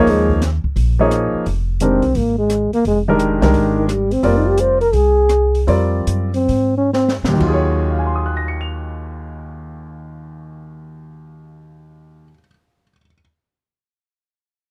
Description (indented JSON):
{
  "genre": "modal jazz",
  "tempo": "121-173 BPM",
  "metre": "4/4",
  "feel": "swing 65% on 8ths",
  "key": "Eb dorian",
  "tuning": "A4 = 440 Hz",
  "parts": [
    { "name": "dark trombone", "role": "second line", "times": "0.0-7.1 s", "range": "Eb3 to C5", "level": "-18 LUFS", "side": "equal", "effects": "none" },
    { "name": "warm baby grand piano", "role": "accompaniment", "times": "0.0-13.2 s", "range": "Eb2 to F7", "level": "-21 LUFS", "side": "equal", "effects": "none" },
    { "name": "upright bass", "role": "bass", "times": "0.0-12.3 s", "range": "F1 to Bb2", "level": "-22 LUFS", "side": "equal", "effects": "none" },
    { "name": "open jazz drum kit", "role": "drums", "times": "0.1-7.6 s", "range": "crash cymbal, hi-hat, kick drum, rim click, snare drum", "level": "-28 LUFS", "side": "equal", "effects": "none" }
  ],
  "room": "little or no reverb",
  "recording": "dry, close 1970s-style studio recording",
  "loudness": "-17 LUFS",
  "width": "mono",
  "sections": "0.0-7.4 A section; 7.4-11.4 B section",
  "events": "trombone solo 0.0-7.4; slowing down 4.2-7.4; drum fill 6.9-7.4",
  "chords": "0.0 Eb9sus4; 1.5 Fm11; 7.4 Ebm11"
}